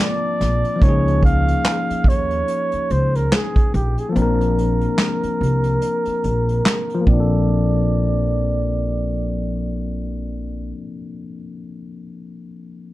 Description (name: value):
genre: lo-fi hip hop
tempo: 72 BPM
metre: 4/4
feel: swing 59% on 16ths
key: Bb major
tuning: A4 = 440 Hz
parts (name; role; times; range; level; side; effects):
- breathy flugelhorn; melody; 0.0-10.7 s; G4 to F5; -24 LUFS; right 2 dB; low-pass filter, plate reverb
- bell-like tine electric piano; accompaniment; 0.0-12.9 s; F3 to Bb4; -24 LUFS; left 4 dB; low-pass filter, plate reverb
- deep dark ambient pad; sustained chords; 0.0-0.8 s; Bb3 to D6; -37 LUFS; right 5 dB; none
- upright bass; bass; 0.4-10.7 s; Bb1 to Eb2; -21 LUFS; equal; none
- vintage brush drum kit; drums; 0.4-7.3 s; handclaps, hi-hat, kick drum, snare drum; -17 LUFS; equal; none
room: light reverb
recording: dark, warm production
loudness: -17 LUFS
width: side -16 dB against mid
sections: 0.8-7.5 A section; 7.5-10.8 B section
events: filter sweep 0.8-7.5; kick muted 4.2-7.5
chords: 0.0 Bbmaj7; 0.8 Db69; 4.2 Bb; 7.1 Bbmaj7